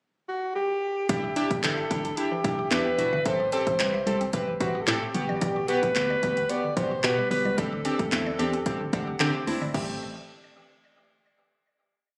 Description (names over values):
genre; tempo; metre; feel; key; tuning
dance-pop; 111 BPM; 4/4; straight; A dorian; A4 = 443 Hz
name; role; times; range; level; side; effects
breathy alto saxophone; melody; 0.3-9.2 s; F#4 to D5; -30 LUFS; equal; delay
chorused retro synth keys; accompaniment; 1.1-10.0 s; A3 to A5; -32 LUFS; equal; sidechain pumping
mallet-like synth pluck; arpeggios; 1.1-10.0 s; D3 to E5; -40 LUFS; equal; chorus, sidechain pumping, delay
organ-like FM bass; bass; 1.1-10.0 s; E1 to D3; -34 LUFS; equal; sidechain pumping
punchy analog drum machine; drums; 1.1-9.9 s; crash cymbal, handclaps, hi-hat, kick drum; -33 LUFS; equal; none
room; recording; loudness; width
light reverb, digital ambience; recorded on a phone in the room, club reverb; -27 LUFS; mono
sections
0.0-1.1 pickup bar; 1.1-9.7 pre-chorus; 9.7-11.9 final chord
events
synth keys fill 8.7-9.7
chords
0.0 N.C.; 1.1 Em7; 3.3 Am7; 5.1 Gmaj7; 7.6 D7sus4; 9.7 Am7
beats
0.01 0.55 | 1.09 1.64 2.18 2.72 | 3.26 3.80 4.34 4.88 | 5.42 5.96 6.50 7.04 | 7.58 8.12 8.66 9.20 | 9.74